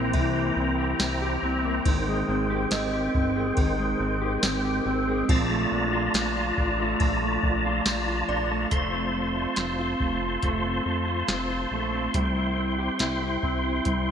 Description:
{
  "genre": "dream pop",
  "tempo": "70 BPM",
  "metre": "4/4",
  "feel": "straight",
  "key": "F major",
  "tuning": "A4 = 439 Hz",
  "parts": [
    { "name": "percussive tonewheel organ", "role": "sustained chords", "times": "0.0-14.1 s", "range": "Eb3 to C6", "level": "-28 LUFS", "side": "equal", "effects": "overdrive, chorus vibrato, fast rotary speaker" },
    { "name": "mellow electric guitar", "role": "arpeggios", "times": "0.0-14.1 s", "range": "Eb3 to G4", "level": "-28 LUFS", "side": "equal", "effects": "analog chorus, ping-pong delay" },
    { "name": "fat analog bass", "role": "bass", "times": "0.0-14.1 s", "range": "F1 to F2", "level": "-31 LUFS", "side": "equal", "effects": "none" },
    { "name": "synth chime", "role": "texture", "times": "0.0-9.1 s", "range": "D5 to G5", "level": "-38 LUFS", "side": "right 3 dB", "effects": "ensemble chorus, ping-pong delay" },
    { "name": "soft vintage rhythm box", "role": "drums", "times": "0.1-14.1 s", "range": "hi-hat, kick drum, ride cymbal, snare drum, tambourine", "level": "-27 LUFS", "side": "equal", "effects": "gated reverb" }
  ],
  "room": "wet lush hall reverb, RT60 2.9 s",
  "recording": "bright 1980s-style digital production",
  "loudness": "-23 LUFS",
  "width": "side -8 dB against mid",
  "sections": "0.0-8.7 A section; 8.7-14.1 B section",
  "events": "none",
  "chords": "0.0 C7; 1.9 Abmaj7; 5.3 Bbmaj7; 8.7 F; 12.1 C"
}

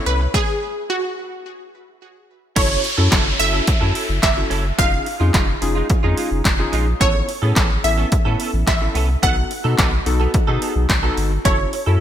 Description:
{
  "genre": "dance-pop",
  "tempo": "108 BPM",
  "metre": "4/4",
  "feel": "straight",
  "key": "F# dorian",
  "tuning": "A4 = 440 Hz",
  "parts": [
    { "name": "wide unison pluck", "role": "melody", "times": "0.0-12.0 s", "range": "F#4 to F#5", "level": "-22 LUFS", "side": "right 1 dB", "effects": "phaser, ping-pong delay" },
    { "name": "warm analog keys", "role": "accompaniment", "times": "0.0-12.0 s", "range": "B3 to A4", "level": "-25 LUFS", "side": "left 2 dB", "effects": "chorus, sidechain pumping" },
    { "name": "warm sub bass", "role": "bass", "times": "0.1-12.0 s", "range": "E#1 to B2", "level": "-20 LUFS", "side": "equal", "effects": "sidechain pumping" },
    { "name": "punchy analog drum machine", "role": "drums", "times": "0.1-11.9 s", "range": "crash cymbal, handclaps, hi-hat, kick drum, snare drum", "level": "-19 LUFS", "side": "equal", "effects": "gated reverb" },
    { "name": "direct-recorded clean electric guitar", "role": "riff", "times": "0.2-12.0 s", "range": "G#3 to A4", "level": "-28 LUFS", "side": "right 7 dB", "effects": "ensemble chorus" },
    { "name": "downlifter", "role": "sound effects", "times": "2.6-7.0 s", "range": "none", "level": "-25 LUFS", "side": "right 1 dB", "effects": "none" }
  ],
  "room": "light reverb",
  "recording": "bright 1980s-style digital production",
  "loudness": "-16 LUFS",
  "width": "side -10 dB against mid",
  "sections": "0.0-2.6 A section; 2.6-12.0 B section",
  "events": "stop 0.3-2.6",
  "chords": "0.3 N.C.; 2.6 F#m7; 4.8 C#add9/E#; 7.0 Aadd9; 9.2 B7; 11.5 F#m7"
}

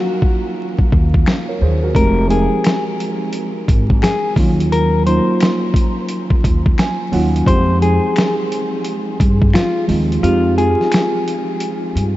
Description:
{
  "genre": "lo-fi hip hop",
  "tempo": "87 BPM",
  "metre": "4/4",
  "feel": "swing 62% on 16ths",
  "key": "F phrygian",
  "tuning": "A4 = 440 Hz",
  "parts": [
    { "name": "clean electric guitar", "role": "melody", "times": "0.0-11.8 s", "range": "F4 to C5", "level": "-21 LUFS", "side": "left 3 dB", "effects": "low-pass filter, analog delay" },
    { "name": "muted felt-like synth keys", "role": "accompaniment", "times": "0.0-12.2 s", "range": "F3 to Ab5", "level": "-19 LUFS", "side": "right 2 dB", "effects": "chorus, cassette tape, low-pass filter" },
    { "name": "dusty soul sampler-style drum kit", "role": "drums", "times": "0.2-12.2 s", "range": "hi-hat, kick drum, snare drum", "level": "-18 LUFS", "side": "equal", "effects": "overdrive" },
    { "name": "upright bass", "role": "bass", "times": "0.9-12.2 s", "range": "F1 to G2", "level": "-16 LUFS", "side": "equal", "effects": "none" },
    { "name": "finger snaps", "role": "percussion", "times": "1.3-11.1 s", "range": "none", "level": "-36 LUFS", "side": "left 6 dB", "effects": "none" }
  ],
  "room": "moderate huge ambient reverb, RT60 8.4 s",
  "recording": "dreamy mix soaked in reverb, vinyl crackle, nothing above 7.8 kHz",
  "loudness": "-13 LUFS",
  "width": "side -16 dB against mid",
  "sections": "0.0-12.2 A section",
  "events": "break 0.0-1.9; synth keys fill 6.4-7.5; kick muted 10.2-12.2",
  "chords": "0.0 Ebm9; 1.9 Fm9; 4.4 Ebm9; 7.5 Fm9"
}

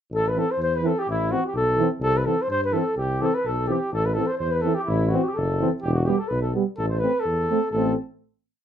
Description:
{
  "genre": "balkan folk",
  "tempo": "126 BPM",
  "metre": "2/4",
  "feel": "swing 55% on 16ths",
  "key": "A minor",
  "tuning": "A4 = 440 Hz",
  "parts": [
    { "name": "mellow flugelhorn", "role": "melody", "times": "0.1-7.9 s", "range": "E4 to C5", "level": "-26 LUFS", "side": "right 1 dB", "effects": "none" },
    { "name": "warm tuba", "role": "bass", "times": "0.1-7.9 s", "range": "E1 to G2", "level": "-26 LUFS", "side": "equal", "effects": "none" },
    { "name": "mellow clarinet", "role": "second line", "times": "0.2-8.0 s", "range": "E4 to C5", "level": "-29 LUFS", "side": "left 3 dB", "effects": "none" },
    { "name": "clear trombone", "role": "accompaniment", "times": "0.4-8.0 s", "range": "B3 to C4", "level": "-28 LUFS", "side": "left 6 dB", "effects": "none" },
    { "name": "mellow euphonium", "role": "accompaniment", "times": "0.4-8.0 s", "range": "E3 to A3", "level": "-27 LUFS", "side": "right 6 dB", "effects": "none" }
  ],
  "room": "moderate small room reverb, RT60 0.5 s",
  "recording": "minimal, uncompressed stereo recording",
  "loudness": "-21 LUFS",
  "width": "side -9 dB against mid",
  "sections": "0.1-7.7 A section; 7.7-8.6 final chord",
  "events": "none",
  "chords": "0.1 Am; 2.0 C; 3.9 Am; 5.8 Em; 6.8 Am"
}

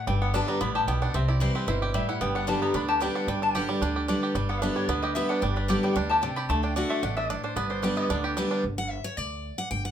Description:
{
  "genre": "bluegrass",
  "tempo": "224 BPM",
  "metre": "4/4",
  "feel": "straight",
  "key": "G major",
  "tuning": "A4 = 440 Hz",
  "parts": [
    { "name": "lap resonator guitar", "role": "second line", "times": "0.0-8.5 s", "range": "B4 to B5", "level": "-30 LUFS", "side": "left 3 dB", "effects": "none" },
    { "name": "picked steel-string acoustic guitar", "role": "accompaniment", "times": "0.0-9.9 s", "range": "G2 to G5", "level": "-29 LUFS", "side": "left 1 dB", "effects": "none" },
    { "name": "bluegrass banjo", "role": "melody", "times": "0.1-8.6 s", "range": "G3 to G4", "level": "-30 LUFS", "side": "right 5 dB", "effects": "none" },
    { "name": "upright bass", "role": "bass", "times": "0.1-9.9 s", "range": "G1 to D2", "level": "-30 LUFS", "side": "equal", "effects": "none" }
  ],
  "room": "moderate studio reverb, RT60 0.5 s",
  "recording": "none",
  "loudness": "-24 LUFS",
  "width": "side -9 dB against mid",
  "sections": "0.0-8.6 A section; 8.6-9.9 A section",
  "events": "resonator guitar played with a steel bar solo 0.0-8.6; steel-string acoustic guitar solo 8.6-9.9",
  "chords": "0.1 G; 1.1 C; 2.2 G; 6.5 D; 7.6 G; 8.6 G5"
}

